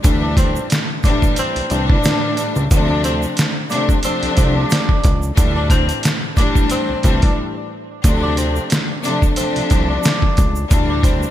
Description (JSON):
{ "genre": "hip hop, boom-bap hip-hop", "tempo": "90 BPM", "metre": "4/4", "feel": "swing 55% on 16ths", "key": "D minor", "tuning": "A4 = 443 Hz", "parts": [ { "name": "clear studio string section", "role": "accompaniment", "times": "0.0-11.3 s", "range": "A2 to D4", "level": "-20 LUFS", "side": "left 2 dB", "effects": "cassette tape" }, { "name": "fat analog bass", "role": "bass", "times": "0.0-11.3 s", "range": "C2 to D2", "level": "-20 LUFS", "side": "equal", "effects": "none" }, { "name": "trip hop sampler-style drum kit", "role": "drums", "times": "0.0-11.2 s", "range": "hi-hat, kick drum, snare drum", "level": "-16 LUFS", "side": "equal", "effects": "gated reverb" }, { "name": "egg shaker", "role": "percussion", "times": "0.0-11.3 s", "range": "none", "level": "-33 LUFS", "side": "right 8 dB", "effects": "none" }, { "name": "warm tenor saxophone", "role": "melody", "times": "0.2-11.3 s", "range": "C4 to D4", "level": "-24 LUFS", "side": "equal", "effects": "ping-pong delay" } ], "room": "light reverb, small room ambience", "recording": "bright 1980s-style digital production", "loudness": "-14 LUFS", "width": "side -12 dB against mid", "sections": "0.0-11.3 A section", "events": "break 7.4-8.0", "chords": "0.0 A7sus4/D; 2.7 Dm7; 5.4 A7sus4/D; 8.0 Dm7; 10.7 A7sus4/D" }